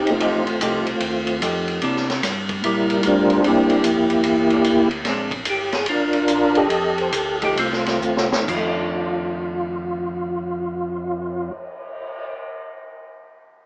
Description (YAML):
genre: soul jazz organ trio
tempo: 127-149 BPM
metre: 4/4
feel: swing 65% on 8ths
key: F mixolydian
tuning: A4 = 441 Hz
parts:
  - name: percussive tonewheel organ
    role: melody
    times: 0.0-11.5 s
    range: G3 to Eb5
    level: -18 LUFS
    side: equal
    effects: slow rotary speaker, chorus vibrato
  - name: mellow tonewheel organ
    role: bass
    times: 0.0-11.5 s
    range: F1 to C3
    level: -31 LUFS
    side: equal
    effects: chorus vibrato, slow rotary speaker
  - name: vintage drum kit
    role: drums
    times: 0.1-12.2 s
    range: crash cymbal, cymbal swell, hi-hat, kick drum, ride cymbal, snare drum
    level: -25 LUFS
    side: equal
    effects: none
  - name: vintage hollow-body jazz guitar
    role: accompaniment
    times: 0.2-11.7 s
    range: Eb3 to G4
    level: -26 LUFS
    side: equal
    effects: none
room: moderate studio reverb, RT60 1.0 s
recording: band playing live in one room, small speaker sound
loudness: -18 LUFS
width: side -30 dB against mid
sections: 0.0-8.5 A section; 8.5-12.3 B section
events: slowing down 5.1-8.5; drum fill 8.0-8.5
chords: 0.0 F9; 1.8 C9; 5.1 Bb9; 6.7 F9; 8.5 F6